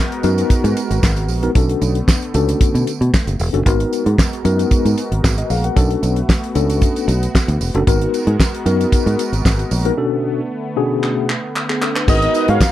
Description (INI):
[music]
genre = early-eighties boogie funk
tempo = 114 BPM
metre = 4/4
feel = straight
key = unclear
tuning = A4 = 445 Hz
[part]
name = brassy analog pad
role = sustained chords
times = 0.0-12.7 s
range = D3 to A#4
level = -25 LUFS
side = right 1 dB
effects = chorus
[part]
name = damped 70s drum kit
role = drums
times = 0.1-12.7 s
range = crash cymbal, handclaps, hi-hat, kick drum, snare drum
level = -16 LUFS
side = equal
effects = none
[part]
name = mellow tine electric piano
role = accompaniment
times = 0.2-12.6 s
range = B2 to F#5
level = -19 LUFS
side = left 3 dB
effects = medium stereo tremolo
[part]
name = fingered electric bass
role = bass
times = 0.2-12.6 s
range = E1 to B2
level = -17 LUFS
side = equal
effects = none
[part]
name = tambourine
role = percussion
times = 0.2-12.7 s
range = none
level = -31 LUFS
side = right 15 dB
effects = none
[part]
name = fat analog lead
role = melody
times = 12.1-12.7 s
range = D#5 to E#5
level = -17 LUFS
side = right 1 dB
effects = phaser
[part]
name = mellow synth brass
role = second line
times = 12.3-12.6 s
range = D#4 to D#5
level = -20 LUFS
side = right 3 dB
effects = chorus
[sound]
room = little or no reverb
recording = dry, close 1970s-style studio recording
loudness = -14 LUFS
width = side -13 dB against mid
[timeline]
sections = 0.0-12.1 A section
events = break 10.0-12.1; drum fill 11.0-12.1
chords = 0.0 G#m9; 1.6 Bm9; 3.7 G#m9; 5.8 Bm9; 7.9 G#m9; 10.0 Bm9; 12.1 G#m9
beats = 0.50 1.03 | 1.56 2.08 2.61 3.13 | 3.66 4.19 4.71 5.24 | 5.77 6.29 6.82 7.34 | 7.87 8.40 8.92 9.45 | 9.98 10.50 11.03 11.56 | 12.08 12.61